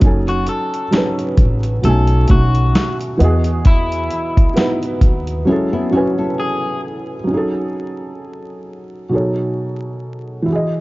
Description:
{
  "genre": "lo-fi hip hop",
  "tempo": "66 BPM",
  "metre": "4/4",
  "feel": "swing 57% on 16ths",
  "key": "F# dorian",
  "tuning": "A4 = 440 Hz",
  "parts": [
    { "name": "felt-muted upright piano", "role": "accompaniment", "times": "0.0-10.8 s", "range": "B2 to G#5", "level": "-19 LUFS", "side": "right 1 dB", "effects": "cassette tape" },
    { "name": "upright bass", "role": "bass", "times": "0.0-5.4 s", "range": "F#1 to E2", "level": "-17 LUFS", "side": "equal", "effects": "none" },
    { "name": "dusty soul sampler-style drum kit", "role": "drums", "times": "0.0-5.5 s", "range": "hi-hat, kick drum, snare drum", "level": "-14 LUFS", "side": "equal", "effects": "none" },
    { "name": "electric guitar at the edge of break-up", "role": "melody", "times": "0.3-6.8 s", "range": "E4 to A4", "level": "-24 LUFS", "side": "left 2 dB", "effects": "none" },
    { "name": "nylon-string guitar", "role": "second line", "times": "5.5-7.3 s", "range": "G#3 to A4", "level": "-23 LUFS", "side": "left 3 dB", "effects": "tape echo" }
  ],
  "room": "small room reverb",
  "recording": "dark, warm production, vinyl crackle, nothing above 7.5 kHz",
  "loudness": "-14 LUFS",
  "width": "side -20 dB against mid",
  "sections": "0.0-7.3 A section; 7.3-10.8 B section",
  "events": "break 5.5-7.3",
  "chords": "0.0 F#m69; 1.8 B13; 3.2 Emaj9; 5.5 F#m9; 7.3 F#m69; 9.1 B13"
}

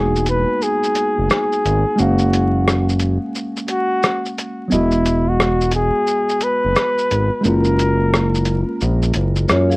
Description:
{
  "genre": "lo-fi hip hop",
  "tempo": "88 BPM",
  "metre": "4/4",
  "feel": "swing 63% on 16ths",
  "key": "E major",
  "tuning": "A4 = 439 Hz",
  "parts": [
    { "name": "breathy flugelhorn", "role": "melody", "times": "0.0-8.8 s", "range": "E4 to B4", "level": "-20 LUFS", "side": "equal", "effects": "tape echo" },
    { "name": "mellow tine electric piano", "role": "accompaniment", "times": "0.0-9.8 s", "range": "F#3 to E#5", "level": "-21 LUFS", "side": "right 1 dB", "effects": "medium stereo tremolo, cassette tape" },
    { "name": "smooth gliding synth bass", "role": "bass", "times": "0.0-9.8 s", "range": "E1 to F#2", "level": "-18 LUFS", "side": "equal", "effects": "none" },
    { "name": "lo-fi sampler-style drum kit", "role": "drums", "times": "0.2-9.8 s", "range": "hi-hat, rim click, shaker", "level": "-21 LUFS", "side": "equal", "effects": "none" },
    { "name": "vibraphone with medium hard mallets", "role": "second line", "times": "9.5-9.8 s", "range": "E#4 to E#5", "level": "-17 LUFS", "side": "left 1 dB", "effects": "none" }
  ],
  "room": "light reverb",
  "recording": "worn, warbling old tape, cassette tape, vinyl crackle, warbly pitch drift",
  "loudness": "-15 LUFS",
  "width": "side -24 dB against mid",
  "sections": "0.0-9.8 A section",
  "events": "break 0.0-9.8",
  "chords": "0.0 Emaj9; 2.0 F#maj9; 4.7 Emaj9; 7.4 F#maj9"
}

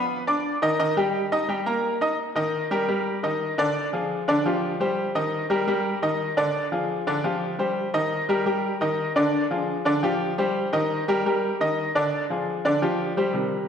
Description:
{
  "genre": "latin",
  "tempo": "172 BPM",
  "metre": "4/4",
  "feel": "straight",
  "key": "unclear",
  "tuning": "A4 = 440 Hz",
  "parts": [
    { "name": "bright upright piano", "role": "solo", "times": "0.0-13.7 s", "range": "C3 to Eb6", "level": "-22 LUFS", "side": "equal", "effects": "none" }
  ],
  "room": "wet concert hall reverb, RT60 1.8 s",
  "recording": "recorded in a church or concert hall",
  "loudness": "-22 LUFS",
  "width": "side -7 dB against mid",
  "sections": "0.0-2.2 A section; 2.2-13.3 B section",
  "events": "none",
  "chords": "0.0 Bm; 0.8 Eb; 3.6 Ddim; 4.3 G5; 5.0 Cm; 5.7 Eb; 6.4 Ddim; 7.1 G5; 7.8 Cm; 8.5 Eb; 9.2 Ddim; 9.9 G5; 10.6 Cm; 11.3 Eb; 11.9 Ddim; 12.6 G5"
}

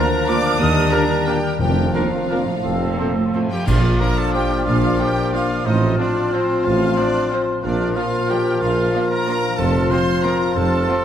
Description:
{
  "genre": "classical, orchestral ballroom waltz",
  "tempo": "163-200 BPM",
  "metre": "3/4",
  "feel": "rubato",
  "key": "Bb major",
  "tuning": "A4 = 444 Hz",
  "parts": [
    { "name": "rich studio violin section", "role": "melody", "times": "0.0-11.0 s", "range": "C5 to Eb6", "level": "-29 LUFS", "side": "left 1 dB", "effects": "none" },
    { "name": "bright clarinet", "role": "second line", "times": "0.0-11.0 s", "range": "C4 to F4", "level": "-28 LUFS", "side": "left 2 dB", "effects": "none" },
    { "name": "large flute ensemble", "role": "second line", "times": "0.0-11.0 s", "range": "F5 to F6", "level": "-31 LUFS", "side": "right 2 dB", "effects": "none" },
    { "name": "mellow cor anglais", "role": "second line", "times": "0.0-11.0 s", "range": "A4 to D5", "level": "-28 LUFS", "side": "right 2 dB", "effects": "none" },
    { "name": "rich studio violin section", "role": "second line", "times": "0.0-11.0 s", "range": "C4 to Eb5", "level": "-32 LUFS", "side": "equal", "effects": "none" },
    { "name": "mellow bassoon", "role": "accompaniment", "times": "0.0-11.0 s", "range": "F3 to G3", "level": "-26 LUFS", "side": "right 2 dB", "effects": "none" },
    { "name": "rich studio viola section", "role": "accompaniment", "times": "0.0-11.0 s", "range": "F3 to Bb4", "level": "-30 LUFS", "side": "right 1 dB", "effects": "none" },
    { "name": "dark French horn section", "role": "sustained chords", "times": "0.0-11.0 s", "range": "Bb3 to G4", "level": "-24 LUFS", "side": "left 3 dB", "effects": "none" },
    { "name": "dark trombone section", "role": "sustained chords", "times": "0.0-3.5 s", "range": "F2 to Bb3", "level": "-31 LUFS", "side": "right 4 dB", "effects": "none" },
    { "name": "concert harp", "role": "arpeggios", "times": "0.0-11.0 s", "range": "A2 to D6", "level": "-26 LUFS", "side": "left 8 dB", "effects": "none" },
    { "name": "clear trumpet", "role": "stabs", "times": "0.0-11.0 s", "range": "C4 to C5", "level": "-27 LUFS", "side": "right 2 dB", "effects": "none" },
    { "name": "clear studio double bass section", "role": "bass", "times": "0.6-10.8 s", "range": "F1 to Eb2", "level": "-26 LUFS", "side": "right 3 dB", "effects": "none" },
    { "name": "mellow tuba", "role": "bass", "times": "0.6-10.8 s", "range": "F1 to Eb2", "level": "-27 LUFS", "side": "right 4 dB", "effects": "none" },
    { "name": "warm studio cello section", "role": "bass", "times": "0.6-10.8 s", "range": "Eb2 to Bb2", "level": "-26 LUFS", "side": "right 2 dB", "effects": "none" },
    { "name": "cymbal swell, clash cymbals and concert bass drum", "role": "percussion", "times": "1.6-4.3 s", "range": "none", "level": "-26 LUFS", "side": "equal", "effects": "none" },
    { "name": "timpani", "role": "percussion", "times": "1.6-4.1 s", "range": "F2 to Bb2", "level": "-26 LUFS", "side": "equal", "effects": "none" }
  ],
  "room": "moderate scoring stage reverb, RT60 2.0 s",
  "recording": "none",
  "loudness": "-16 LUFS",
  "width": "side -9 dB against mid",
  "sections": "0.0-3.7 A section; 3.7-11.0 B section",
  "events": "band accent 3.7-4.0",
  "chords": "0.0 Bb/D; 0.6 Ebmaj7; 1.6 Bb/F; 2.6 F; 3.7 Bb; 5.7 F7/A; 7.6 Bb; 9.6 F"
}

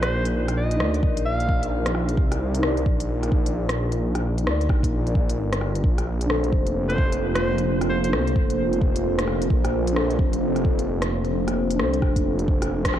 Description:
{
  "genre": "future garage",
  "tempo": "131 BPM",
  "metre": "4/4",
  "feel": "swing 61% on 16ths",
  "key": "unclear",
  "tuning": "A4 = 441 Hz",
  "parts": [
    { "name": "warm alto saxophone", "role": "melody", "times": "0.0-1.6, 6.9-8.1 s", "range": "C5 to F5", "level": "-30 LUFS", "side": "right 1 dB", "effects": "diffuse ambient delay" },
    { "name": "muted felt-like synth keys", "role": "accompaniment", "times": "0.0-13.0 s", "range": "D4 to D5", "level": "-28 LUFS", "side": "left 1 dB", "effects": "chorus, vintage 12-bit sampler grit, sidechain pumping, analog delay" },
    { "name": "swelling detuned saw bass", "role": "bass", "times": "0.0-13.0 s", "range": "F1 to D2", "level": "-25 LUFS", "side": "equal", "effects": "sidechain pumping" },
    { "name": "organic electronic drum kit", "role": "drums", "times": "0.0-13.0 s", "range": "hi-hat, rim click", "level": "-30 LUFS", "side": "equal", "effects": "none" },
    { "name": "electronic kick drum", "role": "drums", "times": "1.0-12.9 s", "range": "none", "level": "-22 LUFS", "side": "equal", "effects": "none" },
    { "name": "deep dark ambient pad", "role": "sustained chords", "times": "6.6-13.0 s", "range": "Bb3 to C5", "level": "-27 LUFS", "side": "right 1 dB", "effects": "chorus, built-in reverb, vintage 12-bit sampler grit, sidechain pumping" }
  ],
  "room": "light reverb, digital ambience",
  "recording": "cassette tape",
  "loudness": "-20 LUFS",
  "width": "side -11 dB against mid",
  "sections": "0.0-13.0 A section",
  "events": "band accent 12.8",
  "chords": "0.0 Cm7; 5.8 Bbmaj9"
}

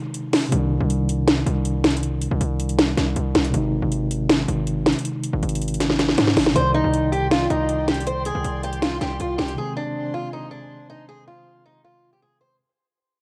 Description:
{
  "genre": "hip hop, trap",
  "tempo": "159 BPM",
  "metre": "4/4",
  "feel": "half-time",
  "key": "C minor",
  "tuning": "A4 = 440 Hz",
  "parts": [
    { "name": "mellow tine electric piano", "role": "accompaniment", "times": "0.0-12.6 s", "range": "C3 to D5", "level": "-28 LUFS", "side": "equal", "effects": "cassette tape" },
    { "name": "trap drum kit", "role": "drums", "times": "0.1-9.6 s", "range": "hi-hat, snare drum", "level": "-23 LUFS", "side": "equal", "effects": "overdrive, cassette tape" },
    { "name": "distorted 808-style bass", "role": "bass", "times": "0.5-9.6 s", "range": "Ab1 to Ab2", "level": "-27 LUFS", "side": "equal", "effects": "distortion" },
    { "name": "picked old ladder-braced acoustic guitar", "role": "melody", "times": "6.6-12.6 s", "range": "D4 to C5", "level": "-27 LUFS", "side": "equal", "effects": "cassette tape" },
    { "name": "dark studio string section", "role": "sustained chords", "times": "6.6-12.6 s", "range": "Ab4 to C6", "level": "-41 LUFS", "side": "equal", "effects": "cassette tape" }
  ],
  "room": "light reverb",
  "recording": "home recording on cassette",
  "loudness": "-22 LUFS",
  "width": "mono",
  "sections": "0.0-6.6 A section; 6.6-12.6 B section",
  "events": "break 0.0-0.5; drum fill 5.8-6.6; fade-out 6.6-12.6",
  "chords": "0.0 Ab; 0.5 Cmadd9; 3.5 Ab; 6.6 Cmadd9; 9.6 Ab"
}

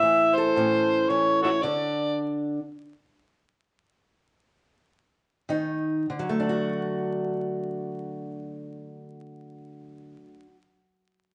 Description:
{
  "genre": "acoustic country blues, solo or duo",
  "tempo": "free time",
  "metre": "none",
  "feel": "none",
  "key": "D major",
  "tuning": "A4 = 442 Hz",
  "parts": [
    { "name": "overdriven harmonica", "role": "melody", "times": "0.0-2.2 s", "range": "F#4 to E5", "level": "-24 LUFS", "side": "equal", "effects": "none" },
    { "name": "fingerpicked old ladder-braced acoustic guitar", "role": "accompaniment", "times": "0.0-10.6 s", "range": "A2 to A4", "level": "-30 LUFS", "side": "equal", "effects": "none" }
  ],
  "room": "wet large studio reverb, RT60 0.9 s",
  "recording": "band playing live in one room, vinyl crackle, nothing above 10.4 kHz",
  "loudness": "-26 LUFS",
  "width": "mono",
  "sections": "0.0-6.1 A section; 6.1-10.9 B section",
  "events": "slowing down 1.6-6.1; stop 1.6-5.5",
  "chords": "0.0 A; 1.6 N.C.; 6.1 D"
}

